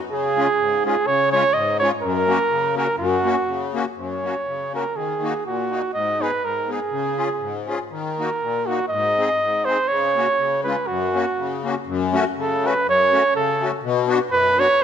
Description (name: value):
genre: alpine folk, alpine dance band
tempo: 122 BPM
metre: 2/4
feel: swing 55% on 8ths, rubato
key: F# major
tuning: A4 = 441 Hz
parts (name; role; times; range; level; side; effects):
- clear flugelhorn; melody; 0.1-14.8 s; F#4 to D#5; -20 LUFS; right 3 dB; none
- musette accordion; accompaniment; 0.1-14.8 s; F#2 to G#4; -24 LUFS; left 6 dB; none
room: moderate concert hall reverb, RT60 1.8 s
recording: none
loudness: -18 LUFS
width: side -8 dB against mid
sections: 0.0-4.0 A section; 4.0-11.9 B section; 11.9-14.8 C section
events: none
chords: 0.1 C#; 2.0 F#; 5.0 D#m; 5.9 G#m; 6.9 C#; 7.9 D#m; 8.9 G#; 9.9 F#/C#; 10.4 C#7; 10.9 F#; 11.9 F#m; 13.8 Bm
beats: | 0.11 0.60 | 1.07 1.55 | 2.03 2.51 | 2.99 3.48 | 3.98 4.47 | 4.97 5.46 | 5.94 6.43 | 6.92 7.42 | 7.92 8.42 | 8.92 9.41 | 9.90 10.39 | 10.88 11.38 | 11.88 12.37 | 12.86 13.35 | 13.83 14.31 | 14.79